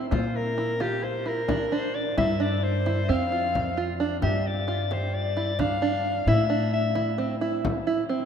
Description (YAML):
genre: contemporary instrumental, chamber music in an uneven meter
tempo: 263 BPM (eighths)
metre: 9/8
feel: straight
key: G dorian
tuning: A4 = 440 Hz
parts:
  - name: open-back banjo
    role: arpeggios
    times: 0.0-8.3 s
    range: C4 to G4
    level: -28 LUFS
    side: right 4 dB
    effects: none
  - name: upright bass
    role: bass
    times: 0.0-8.3 s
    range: F2 to Bb2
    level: -28 LUFS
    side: equal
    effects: none
  - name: growling soprano saxophone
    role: melody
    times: 0.1-7.2 s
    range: G4 to F5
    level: -28 LUFS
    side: left 3 dB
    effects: none
  - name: frame drum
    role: percussion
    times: 0.1-8.0 s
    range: none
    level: -34 LUFS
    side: left 4 dB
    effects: none
room: wet cathedral reverb, RT60 5.0 s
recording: in a vast, echoing space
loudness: -23 LUFS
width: side -7 dB against mid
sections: 0.0-8.3 A section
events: none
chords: 0.1 Bb; 2.2 G5; 3.1 F5; 4.2 G5; 6.3 Am